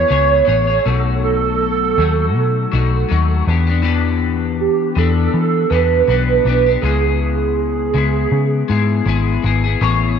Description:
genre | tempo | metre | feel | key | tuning
indie pop, bedroom pop | 80 BPM | 4/4 | swing 55% on 16ths | unclear | A4 = 441 Hz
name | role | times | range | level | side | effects
hollow clarinet-like synth lead | melody | 0.0-9.4 s | G4 to C#5 | -17 LUFS | right 9 dB | ensemble chorus, slapback echo
electric guitar at the edge of break-up | accompaniment | 0.0-10.2 s | B2 to C#5 | -20 LUFS | left 12 dB | analog chorus, vibrato effect
vintage muted picked electric bass | bass | 0.0-10.2 s | G#1 to E3 | -17 LUFS | left 1 dB | none
room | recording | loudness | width
moderate echo chamber reverb, RT60 2.4 s | 1960s-style stereo with parts hard left and right | -14 LUFS | side -7 dB against mid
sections
0.0-10.2 A section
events
none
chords
0.0 Amaj9; 0.9 B7; 3.5 Em7; 6.8 C#m7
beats
0.11 | 0.86 1.61 2.35 3.10 | 3.85 4.60 5.34 6.09 | 6.84 7.59 8.33 9.08 | 9.83

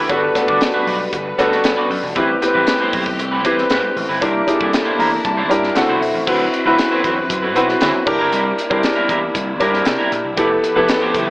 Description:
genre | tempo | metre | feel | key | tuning
polished 1980s jazz-funk pop | 117 BPM | 4/4 | straight | unclear | A4 = 441 Hz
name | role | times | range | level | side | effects
warm baby grand piano | accompaniment | 0.0-11.3 s | A3 to Bb5 | -17 LUFS | equal | analog chorus
warm symphonic string section | sustained chords | 0.0-11.3 s | C3 to B4 | -25 LUFS | equal | none
electric guitar through a small old amp | riff | 0.0-11.3 s | F#3 to D5 | -21 LUFS | right 1 dB | wide subtle chorus
vintage slap bass | bass | 0.0-11.3 s | E1 to D3 | -27 LUFS | equal | none
crisp fusion drum kit | drums | 0.1-11.3 s | crash cymbal, hi-hat, kick drum, snare drum | -22 LUFS | equal | gated reverb
room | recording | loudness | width
light reverb | AM radio sound | -14 LUFS | side -22 dB against mid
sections
0.0-6.3 A section; 6.3-11.3 B section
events
grand piano fill 4.7-6.3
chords
0.1 Gmaj7; 2.2 Am9; 4.2 C9; 5.8 D9; 6.3 D13; 8.1 C7; 10.4 Fmaj9#11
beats
| 0.10 0.61 1.13 1.65 | 2.16 2.68 3.19 3.71 | 4.22 4.73 5.25 5.76 | 6.27 6.79 7.30 7.81 | 8.33 8.84 9.35 9.87 | 10.38 10.89

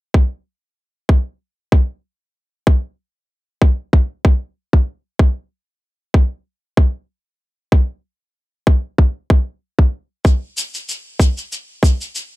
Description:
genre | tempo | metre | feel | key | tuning
downtempo | 95 BPM | 4/4 | swing 54% on 16ths | none | none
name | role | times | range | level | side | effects
electronic kick drum | drums | 0.1-12.0 s | none | -12 LUFS | equal | overdrive
cabasa | drums | 10.3-12.3 s | none | -25 LUFS | left 2 dB | none
room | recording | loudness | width
little or no reverb | none | -16 LUFS | side -19 dB against mid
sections
0.1-12.4 A section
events
none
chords
none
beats
| 0.14 0.78 1.41 2.04 | 2.67 3.30 3.93 4.56 | 5.20 5.83 6.46 7.09 | 7.72 8.35 8.98 9.62 | 10.25 10.88 11.51 12.14

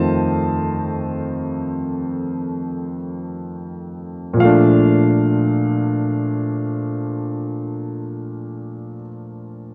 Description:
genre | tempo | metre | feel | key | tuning
solo jazz | free time | none | none | Bb major | A4 = 441 Hz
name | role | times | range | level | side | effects
warm grand piano | solo | 0.0-9.7 s | F2 to A5 | -21 LUFS | equal | none
room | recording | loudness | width
moderate club reverb, RT60 0.6 s | worn, warbling old tape, cassette tape, warbly pitch drift | -20 LUFS | mono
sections
0.0-4.4 A section; 4.4-9.7 B section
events
slowing down 0.0-4.4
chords
0.0 F7; 4.4 Bbmaj7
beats
free time

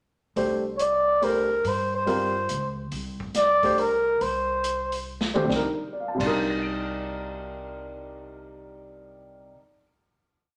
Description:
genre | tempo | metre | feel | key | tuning
modal jazz | 140 BPM | 3/4 | swing 66% on 8ths | C dorian | A4 = 440 Hz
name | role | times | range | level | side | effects
dark baby grand piano | accompaniment | 0.4-9.9 s | C3 to D7 | -31 LUFS | equal | none
upright bass | bass | 0.4-9.5 s | C2 to G2 | -40 LUFS | equal | none
swinging big-band drum kit | drums | 0.4-6.3 s | crash cymbal, hi-hat, kick drum, snare drum, toms | -36 LUFS | equal | none
breathy trumpet | melody | 0.8-5.1 s | Bb4 to D5 | -25 LUFS | equal | none
room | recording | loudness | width
wet large studio reverb, RT60 1.1 s | none | -25 LUFS | mono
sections
0.4-5.5 A section; 5.5-8.1 final chord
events
drum fill 5.1-5.5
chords
0.4 Csus2; 5.5 Cm9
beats
| 0.37 0.80 1.22 | 1.65 2.08 2.50 | 2.93 3.36 3.78 | 4.21 4.64 5.07 | 5.49 5.92 6.35 | 6.78 7.21 7.63

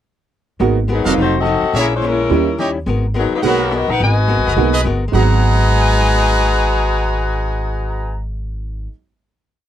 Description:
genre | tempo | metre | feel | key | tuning
jazz, big band swing | 212 BPM | 4/4 | swing 59% on 8ths | G# minor | A4 = 444 Hz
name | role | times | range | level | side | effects
archtop guitar, miked and amplified | accompaniment | 0.6-8.9 s | A#2 to A#4 | -24 LUFS | left 4 dB | none
clear upright piano | accompaniment | 0.6-8.9 s | G#2 to F#4 | -20 LUFS | right 11 dB | none
upright bass | bass | 0.6-8.9 s | E1 to D#2 | -18 LUFS | equal | none
clear saxophone section | melody | 0.9-8.2 s | F#3 to G#5 | -18 LUFS | left 4 dB | none
brilliant trumpet section | stabs | 1.0-8.2 s | F#4 to A#5 | -20 LUFS | right 2 dB | none
room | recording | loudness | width
little or no reverb | dry, close 1970s-style studio recording | -13 LUFS | side -11 dB against mid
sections
0.6-5.1 A section; 5.1-7.4 final chord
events
none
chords
0.6 G#m9; 1.2 F7b9; 1.7 A#m7b5; 2.3 D#7b9; 2.9 G#m9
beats
| 0.61 0.89 1.17 1.46 | 1.74 2.02 2.31 2.59 | 2.87 3.16 3.44 3.72 | 4.01 4.29 4.57 4.86 | 5.14 5.42 5.70 5.99 | 6.27 6.55 6.83 7.12

